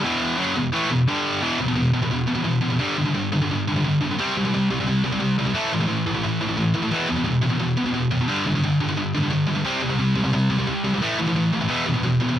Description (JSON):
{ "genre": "metal", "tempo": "175 BPM", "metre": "4/4", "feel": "straight", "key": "E minor", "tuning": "A4 = 440 Hz", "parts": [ { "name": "scooped high-gain guitar", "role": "solo", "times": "0.0-12.4 s", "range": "E2 to C4", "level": "-20 LUFS", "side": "equal", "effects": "distortion, cassette tape" } ], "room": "light reverb", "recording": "home recording on cassette", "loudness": "-20 LUFS", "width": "side -11 dB against mid", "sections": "0.0-1.4 A section; 1.4-12.4 B section", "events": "none", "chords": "0.0 E5; 1.1 G5; 1.4 E5; 2.8 G5; 4.2 C5; 5.5 A5; 6.9 E5; 8.3 G5; 9.6 C5; 11.0 A5; 11.7 E5", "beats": "| 0.03 0.38 0.72 1.07 | 1.41 1.76 2.10 2.45 | 2.79 3.14 3.48 3.83 | 4.17 4.52 4.86 5.20 | 5.55 5.89 6.23 6.57 | 6.92 7.26 7.60 7.94 | 8.28 8.62 8.96 9.30 | 9.65 9.99 10.33 10.67 | 11.01 11.35 11.69 12.04 | 12.38" }